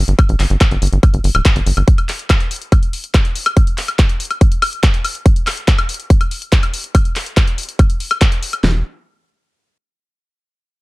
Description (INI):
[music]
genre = psychedelic trance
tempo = 142 BPM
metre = 4/4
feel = straight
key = unclear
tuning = A4 = 439 Hz
[part]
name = tight sequencer bass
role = bass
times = 0.0-1.8, 8.6-8.8 s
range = D1 to A1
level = -14 LUFS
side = equal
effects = none
[part]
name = big-room dance drum kit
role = drums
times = 0.1-8.6 s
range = handclaps, hi-hat, woodblock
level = -19 LUFS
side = left 2 dB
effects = none
[part]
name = big-room dance drum kit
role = drums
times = 0.2-8.7 s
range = handclaps, kick drum, snare drum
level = -12 LUFS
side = equal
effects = none
[sound]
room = little or no reverb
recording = dark, warm production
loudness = -12 LUFS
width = side -22 dB against mid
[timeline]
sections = 0.0-8.6 A section; 8.6-10.3 B section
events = none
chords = none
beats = | 0.19 0.61 1.03 1.45 | 1.88 2.30 2.72 3.14 | 3.57 3.99 4.41 4.83 | 5.26 5.68 6.10 6.52 | 6.95 7.37 7.79 8.21 | 8.64